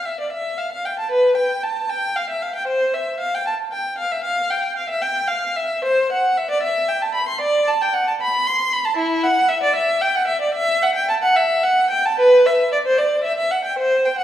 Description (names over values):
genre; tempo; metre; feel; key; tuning
classical, baroque-style suite movement for unaccompanied violin; 76 BPM (dotted quarters); 12/8; rubato; unclear; A4 = 443 Hz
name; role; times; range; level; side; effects
rich violin; solo; 0.0-14.2 s; E4 to C6; -17 LUFS; equal; none
room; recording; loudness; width
wet recital hall reverb, RT60 1.5 s; heard from further back in the room; -17 LUFS; side -11 dB against mid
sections
0.0-14.2 A section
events
none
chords
none